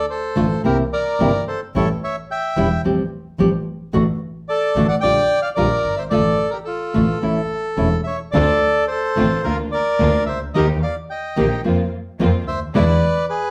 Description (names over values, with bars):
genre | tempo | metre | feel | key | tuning
tango | 110 BPM | 4/4 | rubato | D minor | A4 = 440 Hz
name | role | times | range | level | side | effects
bandoneon | melody | 0.0-13.5 s | F4 to G5 | -22 LUFS | equal | plate reverb
nylon-string guitar | accompaniment | 0.4-12.8 s | B2 to G4 | -22 LUFS | equal | none
clear double bass | bass | 0.4-13.0 s | E1 to F2 | -24 LUFS | equal | none
rich studio string section | stabs | 8.3-13.0 s | G#3 to G4 | -32 LUFS | equal | none
room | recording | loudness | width
wet club reverb, RT60 0.8 s | heard from further back in the room | -19 LUFS | mono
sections
0.0-13.5 A section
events
none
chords
0.0 Dm; 0.7 C7; 1.8 A7; 2.8 Fadd9/A; 3.9 D/A; 5.0 Gm7/Bb; 6.1 Dm/A; 7.2 A; 8.3 Dm7; 9.4 Bb/D; 10.6 Eb; 11.6 Bbsus2/F; 12.7 E7